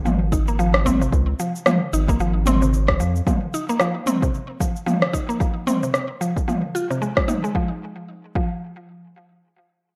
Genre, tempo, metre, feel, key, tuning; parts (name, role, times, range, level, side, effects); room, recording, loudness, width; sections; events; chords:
organic downtempo; 112 BPM; 4/4; swing 58% on 16ths; A4 = 440 Hz
round analog bass; bass; 0.0-3.2 s; Ab1 to F2; -23 LUFS; equal; sidechain pumping
mallet-like synth pluck; arpeggios; 0.1-8.5 s; C3 to F4; -26 LUFS; equal; chorus, digital delay
deep house drum kit; drums; 0.1-7.5 s; rim click, shaker, toms; -25 LUFS; equal
electronic kick drum; drums; 0.3-8.5 s; -26 LUFS; equal
moderate digital room reverb, RT60 1.2 s; rough home demo mix; -21 LUFS; mono
0.0-7.5 A section; 7.5-10.0 B section
0.0 Db (rootless); 3.3 Eb5; 5.4 Csus4; 7.5 N.C.